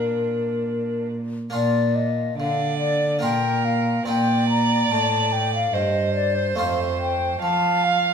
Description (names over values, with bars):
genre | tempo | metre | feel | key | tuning
classical, baroque-style sonata movement with continuo | 71 BPM | 3/4 | straight | Bb major | A4 = 442 Hz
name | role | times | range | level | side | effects
hollow baroque flute | melody | 0.0-8.1 s | Bb4 to Bb5 | -24 LUFS | left 5 dB | none
rich violin | second line | 0.0-8.1 s | D4 to F5 | -25 LUFS | right 8 dB | none
harpsichord | accompaniment | 0.0-8.1 s | F2 to F4 | -29 LUFS | equal | none
warm cello | bass | 0.0-8.1 s | F2 to F3 | -25 LUFS | right 2 dB | none
room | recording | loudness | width
wet recital hall reverb, RT60 1.7 s | minimal, uncompressed stereo recording | -20 LUFS | side -6 dB against mid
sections
0.0-1.5 A section; 1.5-8.1 B section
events
none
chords
0.0 Bb; 4.1 Cm; 6.6 F